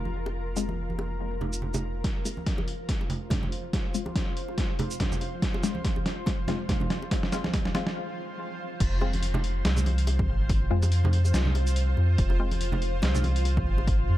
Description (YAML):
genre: deep dubstep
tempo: 142 BPM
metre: 4/4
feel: swing 56% on 16ths, half-time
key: F minor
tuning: A4 = 441 Hz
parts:
  - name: granular cloud pad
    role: sustained chords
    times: 0.0-14.2 s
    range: F4 to C5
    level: -36 LUFS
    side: equal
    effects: built-in reverb
  - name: soft dub sub bass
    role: bass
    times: 0.0-2.0, 8.8-14.2 s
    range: F1 to F2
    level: -25 LUFS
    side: equal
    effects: none
  - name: congas and bongos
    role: percussion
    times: 0.1-13.9 s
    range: none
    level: -35 LUFS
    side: right 2 dB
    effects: dub echo
  - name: filtered dub chord stab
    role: stabs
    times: 0.6-12.5 s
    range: Ab3 to F4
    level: -37 LUFS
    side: left 5 dB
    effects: chorus, dub echo
  - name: trip hop sampler-style drum kit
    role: drums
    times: 0.6-14.0 s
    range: crash cymbal, hi-hat, shaker, snare drum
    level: -32 LUFS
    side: right 1 dB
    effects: none
  - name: electronic kick drum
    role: drums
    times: 2.0-14.0 s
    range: none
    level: -28 LUFS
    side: equal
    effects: overdrive
room: digital ambience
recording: dark, warm production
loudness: -25 LUFS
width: side -15 dB against mid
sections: 0.0-2.0 A section; 2.0-8.8 B section; 8.8-14.2 C section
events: build-up 2.0-8.8; drum fill 2.0-8.0; filter sweep on synth stab 2.0-8.8; filter sweep on ambient pad 2.0-8.8; break 8.0-8.8; drop 8.8-14.2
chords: 0.0 N.C.; 2.0 F5; 8.8 Fm